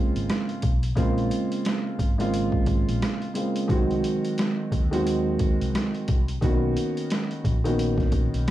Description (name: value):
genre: hip hop, boom-bap hip-hop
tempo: 88 BPM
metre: 4/4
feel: swing 61% on 16ths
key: Bb minor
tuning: A4 = 437 Hz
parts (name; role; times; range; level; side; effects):
- dark baby grand piano; accompaniment; 0.0-8.5 s; Db3 to Gb4; -25 LUFS; right 1 dB; high-pass filter, low-pass filter
- mellow fretless electric bass; bass; 0.0-8.5 s; Ab1 to Eb2; -27 LUFS; equal; tube saturation, ensemble chorus
- boom bap sampler-style drum kit; drums; 0.2-8.5 s; hi-hat, kick drum, rim click, snare drum; -26 LUFS; equal; overdrive
room: little or no reverb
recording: dry, gritty hardware recording, studio reverb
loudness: -22 LUFS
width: side -14 dB against mid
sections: 0.0-8.5 A section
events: none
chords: 0.0 Bbm9; 3.7 Ab7/C; 6.4 Bmaj9